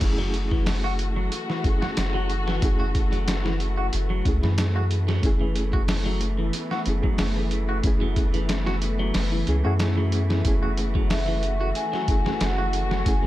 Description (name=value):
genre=trip hop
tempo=92 BPM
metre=4/4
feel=swing 54% on 16ths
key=F# minor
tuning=A4 = 440 Hz
part: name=mellow reed electric piano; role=accompaniment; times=0.0-13.3 s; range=A3 to G#4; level=-31 LUFS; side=equal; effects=fast tremolo, tape echo
part: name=muted studio string section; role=sustained chords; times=0.0-13.3 s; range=E3 to F#4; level=-32 LUFS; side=left 1 dB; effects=none
part: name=soft dub sub bass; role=bass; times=0.0-13.3 s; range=F#1 to F#2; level=-25 LUFS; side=equal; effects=none
part: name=trip hop sampler-style drum kit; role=drums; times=0.0-13.2 s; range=crash cymbal, hi-hat, kick drum, snare drum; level=-26 LUFS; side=equal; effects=none
part: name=bowed-like drone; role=texture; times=0.9-13.3 s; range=A3 to A4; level=-38 LUFS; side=left 2 dB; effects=built-in reverb
part: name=clean electric guitar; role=arpeggios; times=0.2-13.3 s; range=E3 to F#4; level=-32 LUFS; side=equal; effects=phaser, tape echo
part: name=vibraphone with soft mallets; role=melody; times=11.1-13.3 s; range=E5 to G#5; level=-29 LUFS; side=left 1 dB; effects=dub echo
room=little or no reverb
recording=none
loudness=-21 LUFS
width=side -15 dB against mid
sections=0.0-13.3 A section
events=none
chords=0.0 F#m7